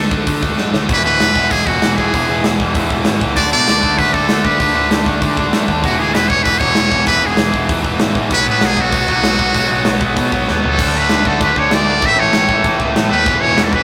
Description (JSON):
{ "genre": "punk rock", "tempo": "194 BPM", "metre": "4/4", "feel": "straight", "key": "E mixolydian", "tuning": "A4 = 440 Hz", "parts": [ { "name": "trumpet with metal mute", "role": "melody", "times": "0.0-13.8 s", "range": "F#4 to E5", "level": "-18 LUFS", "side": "equal", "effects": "none" }, { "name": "tight distorted guitar", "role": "riff", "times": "0.0-13.8 s", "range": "E2 to D4", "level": "-23 LUFS", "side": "equal", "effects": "distortion" }, { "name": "fuzz picked electric bass", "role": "bass", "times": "0.0-13.8 s", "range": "E1 to D3", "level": "-24 LUFS", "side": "equal", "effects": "overdrive" }, { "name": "big rock drum kit", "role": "drums", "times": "0.1-13.8 s", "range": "crash cymbal, hi-hat, kick drum, snare drum, toms", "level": "-20 LUFS", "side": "equal", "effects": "none" }, { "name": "overdriven semi-hollow guitar", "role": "riff", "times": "0.9-13.8 s", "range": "E2 to D4", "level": "-22 LUFS", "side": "equal", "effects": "none" }, { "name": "heavy high-gain guitar", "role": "riff", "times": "13.3-13.8 s", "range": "E3 to E4", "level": "-29 LUFS", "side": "equal", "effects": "none" } ], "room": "light reverb", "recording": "rough rehearsal-room recording", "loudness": "-14 LUFS", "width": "mono", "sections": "0.0-10.8 A section; 10.8-13.8 B section", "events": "drum fill 0.6-0.9, 10.5-10.8", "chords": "0.0 D; 0.9 E; 3.4 D5; 5.8 E; 8.3 B5; 10.8 D5; 12.0 A; 13.3 E" }